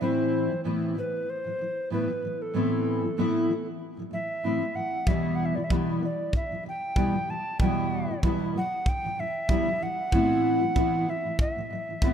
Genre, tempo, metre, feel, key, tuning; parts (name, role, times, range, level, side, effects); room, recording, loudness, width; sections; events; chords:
acoustic pop; 95 BPM; 4/4; swing 55% on 16ths; A4 = 440 Hz
mellow hollow tenor recorder; melody; 0.0-12.1 s; A4 to A5; -31 LUFS; right 2 dB
fingerpicked steel-string acoustic guitar; accompaniment; 0.0-12.1 s; E2 to E4; -27 LUFS; left 1 dB; double-tracked left and right
kick drum; drums; 5.1-12.1 s; -27 LUFS; equal
moderate lush hall reverb, RT60 2.4 s; rough home demo mix; -25 LUFS; side -8 dB against mid
0.0-12.1 A section
0.0 Amadd9; 5.1 Em; 10.1 Amadd9